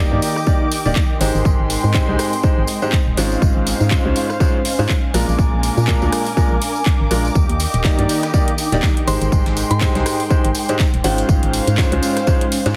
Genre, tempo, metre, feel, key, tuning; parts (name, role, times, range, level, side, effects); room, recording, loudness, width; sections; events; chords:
piano house; 122 BPM; 4/4; swing 57% on 16ths; Eb major; A4 = 440 Hz
muted chamber string section; sustained chords; 0.0-12.8 s; Ab3 to D6; -28 LUFS; equal; sidechain pumping
bright baby grand piano; riff; 0.0-12.8 s; Ab2 to D5; -24 LUFS; equal; sidechain pumping
organ-like FM bass; bass; 0.0-12.7 s; Eb1 to Bb2; -22 LUFS; equal; sidechain pumping
ethereal airy pad; texture; 0.3-12.8 s; Ab3 to D6; -30 LUFS; equal; ensemble chorus, built-in reverb, sidechain pumping
house drum kit; drums; 0.2-12.7 s; handclaps, hi-hat, rim click; -28 LUFS; equal
tambourine; percussion; 0.2-12.7 s; -34 LUFS; equal
electronic kick drum; drums; 0.5-12.4 s; -19 LUFS; equal
breakbeat sampler-style drum kit; drums; 7.4-12.8 s; hi-hat, snare drum, tambourine; -36 LUFS; equal
glassy synth bell; melody; 9.1-11.5 s; G5 to C6; -30 LUFS; equal; chorus, tremolo, dub echo
light reverb, digital ambience; heavily compressed radio sound, multiband compression; -17 LUFS; mono
0.0-12.8 A section
0.0 Ebmaj7; 1.2 Abmaj7; 3.2 Dbmaj7/Ab; 5.1 Bb7; 7.4 Ebmaj7; 9.1 Abmaj7; 11.0 Dbmaj7/Ab